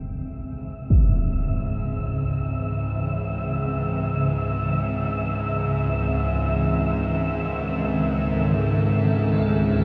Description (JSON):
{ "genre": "dark ambient drone", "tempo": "free time", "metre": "none", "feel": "none", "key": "C# harmonic minor", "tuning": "A4 = 439 Hz", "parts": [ { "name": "granular cloud pad", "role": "sustained chords", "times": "0.0-9.8 s", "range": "C#3 to A4", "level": "-29 LUFS", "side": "equal", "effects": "built-in reverb" }, { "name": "bowed-like drone", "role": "drone", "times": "0.2-9.8 s", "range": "C#2 to G#2", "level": "-27 LUFS", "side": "equal", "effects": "built-in reverb" }, { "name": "wind-like tuned noise texture", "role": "texture", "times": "0.7-9.8 s", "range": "E5", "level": "-34 LUFS", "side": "equal", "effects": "built-in reverb" }, { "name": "impact", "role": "percussion", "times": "0.9-1.1 s", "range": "none", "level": "-27 LUFS", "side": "equal", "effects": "low-pass filter on sfx" } ], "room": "wet cathedral reverb, RT60 5.4 s", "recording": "none", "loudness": "-24 LUFS", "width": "mono", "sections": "0.0-9.8 A section", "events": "fade-in on synth drone 0.0-9.8; fade-in on ambient pad 0.0-9.8; fade-in on synth texture 0.0-9.8", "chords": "0.0 C#m; 6.5 Am" }